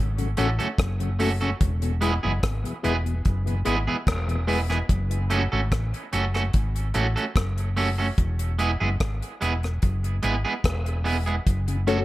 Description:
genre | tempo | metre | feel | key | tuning
dub reggae | 73 BPM | 4/4 | straight | unclear | A4 = 440 Hz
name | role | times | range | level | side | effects
hollow-body short-scale fingered electric bass | bass | 0.0-12.0 s | E1 to A1 | -25 LUFS | equal | none
mellow tonewheel organ | accompaniment | 0.2-4.8, 11.7-12.0 s | E2 to F#4 | -31 LUFS | left 5 dB | overdrive, chorus vibrato, slow rotary speaker, dub echo
deep reggae drum kit | drums | 0.2-12.0 s | hi-hat, kick drum, rim click | -26 LUFS | equal | none
electric guitar at the edge of break-up | accompaniment | 0.4-12.0 s | G#3 to A4 | -28 LUFS | right 3 dB | dub echo
reed electric piano | stabs | 11.9-12.0 s | C#4 to C#5 | -23 LUFS | left 6 dB | fast tremolo
room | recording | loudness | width
light reverb, studio reverb | none | -22 LUFS | side -16 dB against mid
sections
0.0-12.0 A section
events
break 0.0-11.5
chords
0.0 F#m; 1.6 E; 4.9 F#m; 8.2 E; 11.5 F#m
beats
0.79 | 1.61 2.43 3.25 4.07 | 4.89 5.72 6.54 7.36 | 8.18 9.00 9.82 10.64 | 11.46

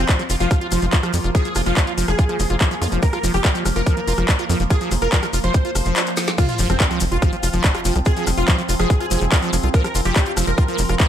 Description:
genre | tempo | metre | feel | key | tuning
psychedelic trance | 143 BPM | 4/4 | straight | F minor | A4 = 440 Hz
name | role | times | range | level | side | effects
supersaw stab | melody | 0.0-11.1 s | C4 to C5 | -26 LUFS | right 1 dB | phaser, sidechain pumping, tape echo
overtone-sweeping drone | sustained chords | 0.0-11.1 s | F3 to C4 | -29 LUFS | right 2 dB | chorus, built-in reverb, sidechain pumping
liquid acid bass | riff | 0.0-11.1 s | F3 to F4 | -25 LUFS | right 1 dB | chorus, auto-pan, sidechain pumping, tape echo
tight sequencer bass | bass | 0.0-11.0 s | F1 to F2 | -21 LUFS | equal | none
electronic kick drum | drums | 0.1-11.1 s | none | -17 LUFS | equal | studio reverb
garage drum kit | drums | 0.1-11.1 s | crash cymbal, handclaps, hi-hat, rim click, snare drum | -24 LUFS | left 1 dB | studio reverb
maracas | percussion | 0.1-11.1 s | none | -31 LUFS | left 6 dB | none
zap and sub drop | sound effects | 2.8-2.9, 6.4-8.1 s | none | -30 LUFS | equal | none
room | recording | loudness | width
little or no reverb | none | -16 LUFS | side -10 dB against mid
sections
0.0-6.4 A section; 6.4-11.1 B section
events
drum fill 6.2; drop 6.4-11.1; impact 6.4-8.1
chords
0.0 F5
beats
0.09 0.51 0.93 | 1.35 1.77 2.19 2.61 | 3.03 3.45 3.87 4.29 | 4.71 5.12 5.54 5.96 | 6.38 6.80 7.22 7.64 | 8.06 8.48 8.90 9.32 | 9.74 10.16 10.58 11.00

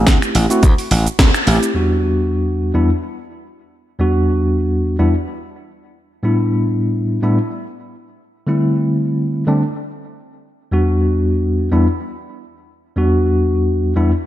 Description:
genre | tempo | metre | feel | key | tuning
nu-disco, nu disco | 107 BPM | 4/4 | swing 55% on 16ths | E minor | A4 = 442 Hz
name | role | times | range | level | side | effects
bright tine electric piano | accompaniment | 0.0-14.1 s | E2 to G4 | -15 LUFS | equal | medium tremolo, vintage 12-bit sampler grit, sidechain pumping, ping-pong delay
slap bass | bass | 0.0-1.6 s | A1 to D2 | -15 LUFS | equal | sidechain pumping
electronic kick drum | drums | 0.1-1.3 s | none | -12 LUFS | equal | none
house drum kit | drums | 0.1-1.7 s | finger snaps, hi-hat, shaker, snare drum | -19 LUFS | equal | low-pass filter on hats, low-pass filter on perc, low-pass filter on snare, low-pass filter on room
room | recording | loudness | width
light reverb | dark, warm production | -14 LUFS | side -13 dB against mid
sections
0.0-1.8 A section; 1.8-14.3 B section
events
filter sweep on tine electric piano 0.0-1.8; band accent 1.2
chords
0.0 D7sus4; 1.8 Em9; 6.0 A9sus4; 8.2 D7sus4; 10.7 Em9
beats
0.07 0.63 1.19 | 1.75 2.31 2.87 3.43 | 4.00 4.56 5.12 5.68 | 6.24 6.80 7.36 7.92 | 8.48 9.04 9.60 10.16 | 10.72 11.29 11.85 12.41 | 12.97 13.53 14.09

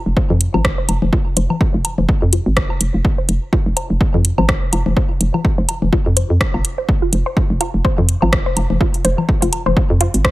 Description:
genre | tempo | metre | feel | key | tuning
minimal techno | 125 BPM | 4/4 | swing 56% on 16ths | F minor | A4 = 440 Hz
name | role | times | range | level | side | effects
hollow knocking FM bass | bass | 0.1-10.3 s | F1 to F2 | -16 LUFS | equal | sidechain pumping
resonant blip pluck | riff | 0.2-10.3 s | F4 to C5 | -24 LUFS | left 1 dB | phaser, vintage 12-bit sampler grit, sidechain pumping, digital delay
electronic kick drum | drums | 0.2-10.3 s | none | -17 LUFS | equal | overdrive
congas and woodblock | percussion | 0.3-9.7 s | none | -22 LUFS | left 3 dB | digital delay
house drum kit | drums | 0.4-10.3 s | hi-hat, rim click | -19 LUFS | equal | overdrive
room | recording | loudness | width
digital ambience | none | -14 LUFS | side -17 dB against mid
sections
0.0-10.3 A section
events
filter sweep on synth arpeggio sound 0.0-10.3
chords
0.0 F5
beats
0.17 0.65 | 1.13 1.61 2.09 2.57 | 3.05 3.53 4.01 4.49 | 4.97 5.45 5.93 6.41 | 6.89 7.37 7.85 8.33 | 8.81 9.29 9.77 10.25

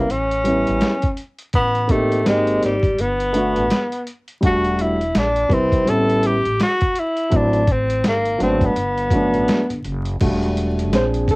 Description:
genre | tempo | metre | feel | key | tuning
hip hop, jazz-hop | 83 BPM | 4/4 | swing 60% on 16ths | unclear | A4 = 435 Hz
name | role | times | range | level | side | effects
breathy tenor saxophone | melody | 0.0-9.9 s | G3 to A4 | -19 LUFS | equal | cassette tape
upright bass | bass | 0.0-11.4 s | E1 to B#1 | -24 LUFS | equal | none
dusty soul sampler-style drum kit | drums | 0.1-11.4 s | crash cymbal, hi-hat, kick drum, snare drum | -21 LUFS | equal | overdrive, cassette tape
dark grand piano | accompaniment | 0.4-11.4 s | F#3 to B#4 | -20 LUFS | equal | cassette tape
room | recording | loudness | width
light reverb | home recording on cassette, vinyl crackle | -16 LUFS | side -25 dB against mid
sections
0.0-10.2 A section; 10.2-11.4 B section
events
grand piano solo 10.2-11.4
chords
0.1 A7; 1.5 Am9b5; 2.3 G#maj7; 3.0 Gmaj7; 4.4 Em11; 5.2 A#add9; 5.9 A7; 7.3 D9/A; 8.1 G#m9b5; 8.8 Gmaj7; 10.2 Em11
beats
0.10 0.82 | 1.54 2.27 2.99 3.71 | 4.43 5.16 5.88 6.60 | 7.33 8.05 8.77 9.49 | 10.22 10.94

